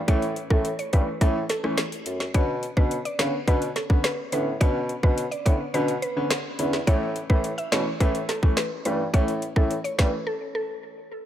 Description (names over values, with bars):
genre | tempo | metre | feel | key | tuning
dancehall | 106 BPM | 4/4 | straight | unclear | A4 = 439 Hz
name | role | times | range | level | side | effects
mellow bassoon | bass | 0.0-10.1 s | E2 to C#3 | -29 LUFS | equal | none
mallet-like synth pluck | melody | 0.1-10.6 s | A4 to E5 | -31 LUFS | equal | chorus, analog delay
clear concert grand piano | accompaniment | 0.1-10.1 s | D3 to C#4 | -29 LUFS | equal | none
island pop drum kit | drums | 0.1-10.1 s | hi-hat, kick drum, rim click, snare drum | -23 LUFS | equal | overdrive
room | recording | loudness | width
light reverb, small room ambience | none | -22 LUFS | side -11 dB against mid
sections
0.0-11.3 A section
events
break 10.3-11.3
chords
0.0 A; 2.3 Bmadd9; 6.9 A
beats
| 0.08 0.65 1.21 1.78 | 2.35 2.91 3.48 4.04 | 4.61 5.18 5.74 6.31 | 6.87 7.44 8.01 8.57 | 9.14 9.70 10.27